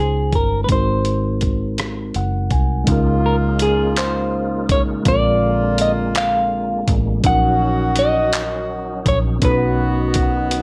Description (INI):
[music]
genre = slow six-eight R&B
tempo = 55 BPM (dotted quarters)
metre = 6/8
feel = straight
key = Db major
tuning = A4 = 439 Hz
[part]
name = semi-hollow electric guitar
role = melody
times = 0.0-10.6 s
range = Ab4 to Gb5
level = -22 LUFS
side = equal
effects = slapback echo, plate reverb
[part]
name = mellow tine electric piano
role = accompaniment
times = 0.0-10.6 s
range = D3 to Ab5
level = -25 LUFS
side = equal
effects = none
[part]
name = vintage muted fingered electric bass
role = bass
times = 0.0-10.6 s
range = Gb1 to Db2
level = -24 LUFS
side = equal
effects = none
[part]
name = dusty soul sampler-style drum kit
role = drums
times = 0.3-10.6 s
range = handclaps, hi-hat, kick drum, rim click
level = -23 LUFS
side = equal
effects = none
[part]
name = tonewheel organ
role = sustained chords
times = 2.9-10.6 s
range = Db3 to F4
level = -31 LUFS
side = equal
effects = chorus vibrato, fast rotary speaker
[part]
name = mellow horn section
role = stabs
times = 2.9-10.6 s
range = Db3 to Gb4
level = -28 LUFS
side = equal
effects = plate reverb
[sound]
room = light reverb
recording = none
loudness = -18 LUFS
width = mono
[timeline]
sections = 0.0-2.9 A section; 2.9-10.6 B section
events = tine electric piano fill 1.8-2.9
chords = 0.0 Dbmaj9; 0.7 Ab9; 2.9 Db6; 5.1 Bb7; 7.2 Ebm7/Bb; 9.4 Cb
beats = | 0.70 1.79 | 2.88 3.97 | 5.06 6.15 | 7.24 8.33 | 9.42 10.52